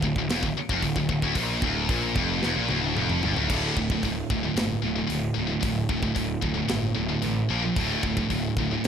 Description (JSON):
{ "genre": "heavy metal", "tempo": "112 BPM", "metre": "4/4", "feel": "straight", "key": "D minor", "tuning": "A4 = 440 Hz", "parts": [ { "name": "heavy high-gain guitar", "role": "riff", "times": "0.0-8.9 s", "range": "D2 to Bb3", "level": "-28 LUFS", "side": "left 10 dB", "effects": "distortion" }, { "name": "scooped high-gain guitar", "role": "riff", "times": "0.0-8.9 s", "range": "D2 to Bb3", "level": "-28 LUFS", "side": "right 9 dB", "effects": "distortion" }, { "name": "fuzz picked electric bass", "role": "bass", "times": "0.0-8.8 s", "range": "D1 to Bb1", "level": "-30 LUFS", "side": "equal", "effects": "overdrive" }, { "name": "tight metal drum kit", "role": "drums", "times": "0.0-8.9 s", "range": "crash cymbal, hi-hat, kick drum, snare drum, toms", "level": "-30 LUFS", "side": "equal", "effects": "none" } ], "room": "light reverb", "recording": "none", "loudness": "-23 LUFS", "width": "side -8 dB against mid", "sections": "0.0-3.5 A section; 3.5-8.9 B section", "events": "drum fill 2.4-3.5", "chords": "0.0 Dm; 3.5 D5; 7.5 Bb5; 7.8 D5", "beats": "0.30 0.83 | 1.37 1.90 2.44 2.97 | 3.50 4.04 4.57 5.11 | 5.64 6.17 6.71 7.24 | 7.77 8.31 8.84" }